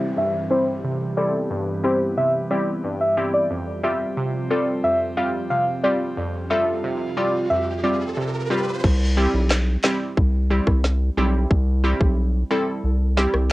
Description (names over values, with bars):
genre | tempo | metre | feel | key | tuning
dancehall | 90 BPM | 4/4 | straight | C major | A4 = 441 Hz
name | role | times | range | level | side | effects
airy breathy pad | sustained chords | 0.0-8.8 s | E3 to G4 | -30 LUFS | right 1 dB | chorus, sidechain pumping, low-pass filter, cassette tape
downlifter and riser | sound effects | 0.0-8.8 s | none | -35 LUFS | right 1 dB | none
soft struck synth lead | melody | 0.2-8.0 s | C5 to F5 | -23 LUFS | equal | chorus, low-pass filter, cassette tape, tape echo
glassy wavetable pluck | accompaniment | 0.2-13.3 s | F2 to A4 | -24 LUFS | equal | chorus, low-pass filter, cassette tape
round analog bass | bass | 8.8-13.5 s | B1 to C2 | -20 LUFS | equal | none
island pop drum kit | drums | 8.8-13.5 s | crash cymbal, handclaps, kick drum, rim click, snare drum | -21 LUFS | equal | overdrive, vintage 12-bit sampler grit
room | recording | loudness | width
moderate studio reverb, RT60 0.5 s | home recording on cassette | -19 LUFS | side -18 dB against mid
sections
0.0-8.8 A section; 8.8-13.5 B section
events
filter sweep 0.0-8.8; riser 5.8-8.8; hi-hats muted 8.8-13.5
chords
0.0 C; 3.5 Fsus2; 8.8 C